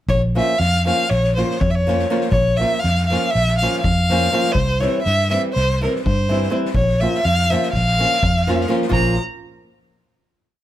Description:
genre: balkan folk, Balkan wedding band.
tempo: 246 BPM (eighths).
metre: 9/8.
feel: straight.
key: Bb dorian sharp4.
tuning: A4 = 440 Hz.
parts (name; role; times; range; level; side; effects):
warm violin; melody; 0.1-9.2 s; Bb4 to Bb5; -20 LUFS; equal; none.
vintage muted fingered electric bass; bass; 0.1-9.2 s; Bb1 to G2; -20 LUFS; equal; none.
soft-mallet drum kit; percussion; 0.1-9.2 s; kick drum, snare drum; -27 LUFS; left 1 dB; none.
flamenco guitar; accompaniment; 0.4-9.2 s; E3 to F4; -22 LUFS; equal; none.
room: little or no reverb.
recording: none.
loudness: -15 LUFS.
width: side -12 dB against mid.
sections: 0.1-8.9 A section; 8.9-10.6 final chord.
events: none.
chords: 0.1 Bbm; 4.6 C; 6.8 Bbm.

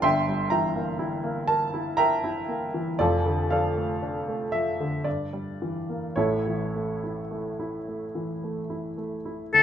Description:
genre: classical, romantic duo for oboe and grand piano.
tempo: 52-62 BPM.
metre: 3/4.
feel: rubato.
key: unclear.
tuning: A4 = 439 Hz.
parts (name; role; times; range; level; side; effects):
warm baby grand piano; accompaniment; 0.0-9.6 s; F1 to C6; -25 LUFS; right 1 dB; none.
clear oboe; melody; 9.5-9.6 s; A4; -12 LUFS; left 4 dB; none.
room: moderate large studio reverb, RT60 0.9 s.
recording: minimal, uncompressed stereo recording.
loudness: -25 LUFS.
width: side -9 dB against mid.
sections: 0.0-9.5 A section.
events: none.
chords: 0.0 Edim/G; 3.0 Dm/F; 5.1 Edim/G; 6.2 A.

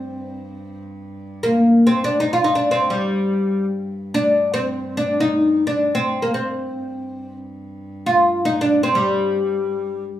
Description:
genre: Turkish makam ensemble.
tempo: free time.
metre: none.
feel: none.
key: G makam ussak.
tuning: A4 = 440 Hz.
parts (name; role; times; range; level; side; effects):
oud; melody; 0.0-10.0 s; G3 to F4; -17 LUFS; left 1 dB; none.
warm cello; drone; 0.0-10.2 s; G2; -34 LUFS; equal; none.
room: wet large studio reverb, RT60 1.0 s.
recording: band playing live in one room, small room ambience.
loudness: -17 LUFS.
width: side -12 dB against mid.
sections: 0.0-10.2 A section.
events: none.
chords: none.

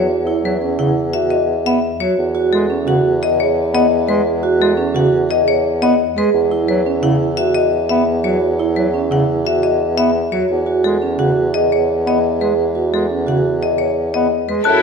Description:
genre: classical, minimalist pattern music.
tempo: 173 BPM.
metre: 6/4.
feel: straight.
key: unclear.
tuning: A4 = 440 Hz.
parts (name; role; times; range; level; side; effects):
marimba with hard mallets; melody; 0.0-14.8 s; A4 to A5; -19 LUFS; left 10 dB; none.
mellow bass clarinet; accompaniment; 0.0-14.6 s; C#3 to B3; -21 LUFS; right 1 dB; none.
vibraphone with soft mallets; arpeggios; 0.0-14.8 s; C#4 to G#4; -19 LUFS; right 6 dB; none.
dark bassoon; bass; 0.0-14.8 s; E2 to F#2; -19 LUFS; right 2 dB; none.
rich symphonic string section; sustained chords; 14.6-14.8 s; E4 to A4; -18 LUFS; left 3 dB; none.
mellow French horn; second line; 14.7-14.8 s; A4; -21 LUFS; right 2 dB; none.
glockenspiel with soft plastic mallets; arpeggios; 14.7-14.8 s; F#6; -14 LUFS; left 5 dB; none.
room: moderate recital hall reverb, RT60 1.6 s.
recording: none.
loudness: -14 LUFS.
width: side -5 dB against mid.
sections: 0.0-14.7 A section.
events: none.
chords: 0.0 Esus2; 2.2 Badd9/E (rootless); 6.3 Esus2; 10.5 Badd9/E (rootless).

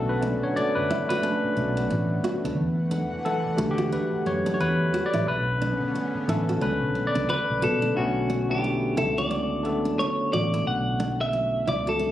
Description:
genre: R&B, neo-soul.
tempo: 89 BPM.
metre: 4/4.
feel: swing 60% on 16ths.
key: B minor.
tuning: A4 = 439 Hz.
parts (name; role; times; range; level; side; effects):
barky tine electric piano; accompaniment; 0.0-12.1 s; D3 to D5; -26 LUFS; left 1 dB; plate reverb.
chorused pulse-width pad; sustained chords; 0.0-7.9 s; D3 to F#5; -31 LUFS; right 1 dB; plate reverb.
vintage muted fingered electric bass; bass; 0.0-12.1 s; F#1 to B2; -28 LUFS; equal; none.
nylon-string guitar; second line; 0.2-12.1 s; D4 to F#4; -31 LUFS; right 3 dB; plate reverb.
clean electric guitar; melody; 7.3-12.1 s; F#4 to F#5; -26 LUFS; left 1 dB; plate reverb.
room: moderate studio reverb, RT60 0.6 s.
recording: recorded on a phone in the room, club reverb.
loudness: -23 LUFS.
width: side -12 dB against mid.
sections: 0.0-8.0 A section; 8.0-12.1 B section.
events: tine electric piano solo 0.0-8.0.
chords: 0.0 Bm9; 2.6 Em11; 5.3 Bm9.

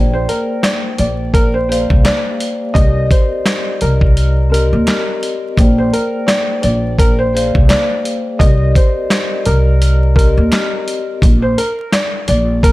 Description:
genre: hip hop, boom-bap hip-hop.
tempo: 85 BPM.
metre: 4/4.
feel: swing 58% on 16ths.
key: C minor.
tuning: A4 = 436 Hz.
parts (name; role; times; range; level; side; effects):
vibraphone with soft mallets; accompaniment; 0.0-11.2 s; Bb3 to G5; -20 LUFS; left 2 dB; none.
upright bass; bass; 0.0-12.7 s; Bb1 to Eb2; -14 LUFS; equal; none.
dark upright piano; melody; 0.1-12.7 s; Bb4 to Eb5; -19 LUFS; equal; none.
dusty soul sampler-style drum kit; drums; 0.3-12.7 s; handclaps, hi-hat, kick drum, snare drum; -14 LUFS; equal; none.
finger snap; percussion; 0.6-12.1 s; none; -31 LUFS; right 4 dB; none.
room: little or no reverb.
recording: vinyl crackle.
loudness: -11 LUFS.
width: side -18 dB against mid.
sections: 0.0-5.6 A section; 5.6-12.7 B section.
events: kick muted 4.2-5.6.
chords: 0.0 Bb13; 2.8 Cm7; 5.6 Bb13; 8.4 Cm7; 11.2 N.C..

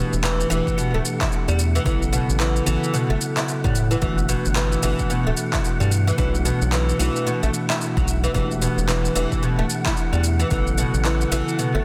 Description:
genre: organic downtempo.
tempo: 111 BPM.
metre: 4/4.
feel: swing 60% on 16ths.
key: E dorian.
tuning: A4 = 440 Hz.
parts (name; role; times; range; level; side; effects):
bell-like tine electric piano; accompaniment; 0.0-11.8 s; B2 to A4; -28 LUFS; equal; sidechain pumping, tape echo.
oud; arpeggios; 0.0-11.8 s; B2 to E4; -27 LUFS; equal; tape echo.
round analog bass; bass; 0.0-11.8 s; D1 to A2; -24 LUFS; equal; sidechain pumping.
wind-like tuned noise texture; texture; 0.2-11.8 s; F#5; -36 LUFS; equal; built-in reverb.
electronic shaker and handclaps; drums; 0.1-11.7 s; none; -31 LUFS; equal; overdrive.
electronic kick drum; drums; 0.7-10.6 s; none; -28 LUFS; equal; overdrive.
room: light reverb.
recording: dense, heavily limited modern master.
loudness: -21 LUFS.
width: mono.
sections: 0.0-11.8 A section.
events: none.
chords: 0.0 Em; 1.9 A; 4.0 Gadd9; 6.2 Bm; 8.3 Em; 10.5 A.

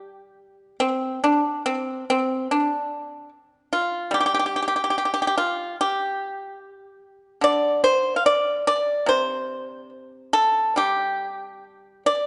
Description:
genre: chinese traditional, Chinese solo plucked strings.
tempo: 72 BPM.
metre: 4/4.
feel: rubato.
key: G shang mode.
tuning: A4 = 439 Hz.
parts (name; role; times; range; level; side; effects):
pipa; solo; 0.0-12.3 s; C3 to F5; -23 LUFS; equal; slapback echo.
room: moderate scoring stage reverb, RT60 1.8 s.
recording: nothing above 10.8 kHz.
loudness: -23 LUFS.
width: mono.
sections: 0.0-12.3 A section.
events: none.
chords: none.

